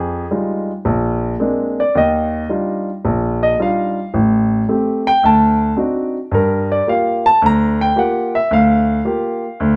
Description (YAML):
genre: solo jazz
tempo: 110 BPM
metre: 4/4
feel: swing 69% on 8ths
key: G minor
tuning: A4 = 440 Hz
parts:
  - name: warm grand piano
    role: solo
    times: 0.0-9.8 s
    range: A1 to Bb5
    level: -16 LUFS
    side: equal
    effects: none
room: moderate large studio reverb, RT60 1.2 s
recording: band playing live in one room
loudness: -16 LUFS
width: mono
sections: 0.0-9.8 A section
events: grand piano solo 0.0-9.8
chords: 0.0 Fm9; 0.9 Bb9; 1.9 Ebmaj9; 4.1 Am7; 5.2 D7b9; 6.3 Gm7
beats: 0.30 0.85 1.40 | 1.94 2.49 3.04 3.58 | 4.13 4.67 5.22 5.77 | 6.31 6.86 7.41 7.95 | 8.50 9.04 9.59